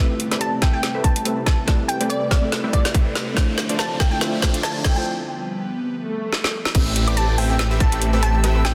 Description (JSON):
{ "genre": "future bass", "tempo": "142 BPM", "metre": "4/4", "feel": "swing 56% on 16ths, half-time", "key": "A minor", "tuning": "A4 = 440 Hz", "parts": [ { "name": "glassy digital keys", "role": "accompaniment", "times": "0.0-5.1 s", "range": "A3 to D5", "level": "-31 LUFS", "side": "equal", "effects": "chorus, sidechain pumping, delay" }, { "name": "airy breathy pad", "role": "sustained chords", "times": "0.0-6.7 s", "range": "C3 to C4", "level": "-35 LUFS", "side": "equal", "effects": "chorus, sidechain pumping" }, { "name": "supersaw stab", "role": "riff", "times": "0.0-8.7 s", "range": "A3 to E5", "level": "-30 LUFS", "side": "equal", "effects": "sidechain pumping, low-pass filter" }, { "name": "detuned saw bass", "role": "bass", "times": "0.0-8.7 s", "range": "A1", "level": "-27 LUFS", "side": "equal", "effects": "chorus, sidechain pumping, high-pass filter" }, { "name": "riser, swell and downlifter", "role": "sound effects", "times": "2.2-8.7 s", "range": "none", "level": "-35 LUFS", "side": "equal", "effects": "none" }, { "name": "trap drum kit", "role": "drums", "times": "0.2-8.7 s", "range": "crash cymbal, hi-hat, snare drum, woodblock", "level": "-27 LUFS", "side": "equal", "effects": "none" }, { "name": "glassy wavetable pluck", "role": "melody", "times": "0.4-8.7 s", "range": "D5 to A5", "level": "-29 LUFS", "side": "equal", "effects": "chorus, sidechain pumping, digital delay" }, { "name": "electronic kick drum", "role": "drums", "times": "0.6-7.9 s", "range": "none", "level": "-21 LUFS", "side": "equal", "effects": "none" }, { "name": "airy dreamy lead", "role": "arpeggios", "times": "6.7-8.7 s", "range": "D6 to E6", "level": "-36 LUFS", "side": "equal", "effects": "chorus, sidechain pumping, delay" }, { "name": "unison pluck", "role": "arpeggios", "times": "6.7-8.7 s", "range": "G4 to G5", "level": "-38 LUFS", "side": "equal", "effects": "none" } ], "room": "light reverb", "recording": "dense, heavily limited modern master", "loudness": "-20 LUFS", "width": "mono", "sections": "0.0-6.7 A section; 6.7-8.7 B section", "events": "build-up 0.0-6.7; drum fill 0.0-5.1, 6.3-6.7; filter sweep on supersaw synth 0.0-6.7; break 5.1-6.7; swell 6.0-6.7; drop 6.7-8.7", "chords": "0.0 Am9; 3.4 Dm9/A; 5.1 G7; 6.7 Am9" }